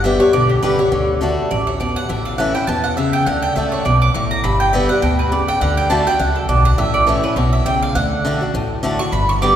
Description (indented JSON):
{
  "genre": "bluegrass",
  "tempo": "205 BPM",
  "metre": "4/4",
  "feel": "swing 56% on 8ths",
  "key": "D major",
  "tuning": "A4 = 439 Hz",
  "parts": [
    { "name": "picked acoustic archtop guitar", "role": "accompaniment", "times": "0.0-9.6 s", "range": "F#2 to G4", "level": "-18 LUFS", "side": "left 2 dB", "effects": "none" },
    { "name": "mandolin", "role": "stabs", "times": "0.0-9.6 s", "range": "G4 to D6", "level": "-19 LUFS", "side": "right 2 dB", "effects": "none" },
    { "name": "upright bass", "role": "bass", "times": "0.0-9.6 s", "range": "G1 to E2", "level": "-20 LUFS", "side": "equal", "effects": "none" }
  ],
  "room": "wet cathedral reverb, RT60 4.4 s",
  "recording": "recorded in a church or concert hall",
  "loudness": "-14 LUFS",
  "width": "side -10 dB against mid",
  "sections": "0.0-9.1 A section",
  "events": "mandolin solo 0.0-9.6",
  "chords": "0.0 G; 0.9 D; 2.1 A; 3.3 D; 4.4 G; 5.6 D; 6.8 A; 8.0 D"
}